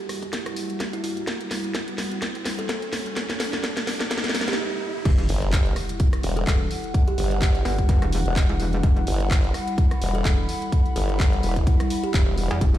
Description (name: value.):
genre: bass house.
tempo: 127 BPM.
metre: 4/4.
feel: swing 56% on 16ths.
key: E minor.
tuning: A4 = 440 Hz.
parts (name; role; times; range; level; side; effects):
dark analog pad; sustained chords; 0.0-12.8 s; G3 to F#5; -34 LUFS; left 1 dB; wide subtle chorus, sidechain pumping.
riser and impact; sound effects; 0.1-6.9 s; none; -33 LUFS; equal; none.
warbly tape-like pad; texture; 0.0-12.8 s; G3 to B5; -34 LUFS; left 1 dB; chorus, built-in reverb, phaser, sidechain pumping.
garage drum kit; drums; 0.1-12.8 s; crash cymbal, handclaps, hi-hat, rim click, snare drum; -29 LUFS; equal; none.
electronic kick drum; drums; 0.2-12.7 s; none; -20 LUFS; equal; high-pass filter on kick.
kalimba; melody; 0.9-12.5 s; E4 to A4; -33 LUFS; right 2 dB; ping-pong delay.
metallic wobble bass; bass; 5.1-12.8 s; E1 to E2; -24 LUFS; equal; chorus, tube saturation, sidechain pumping.
formant-sweep wobble bass; bass; 5.3-12.5 s; E1 to G1; -23 LUFS; equal; chorus, tube saturation, sidechain pumping.
room: light reverb, digital ambience.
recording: played on a big sound system in a bare room, stone room reverb.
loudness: -21 LUFS.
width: side -13 dB against mid.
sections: 0.0-5.1 A section; 5.1-12.8 B section.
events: build-up 0.0-5.1; drum fill 0.0-4.6; riser 0.1-5.1; stop 4.6-5.1; drop 5.1-12.8; impact 5.1-6.9.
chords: 0.0 Emadd9.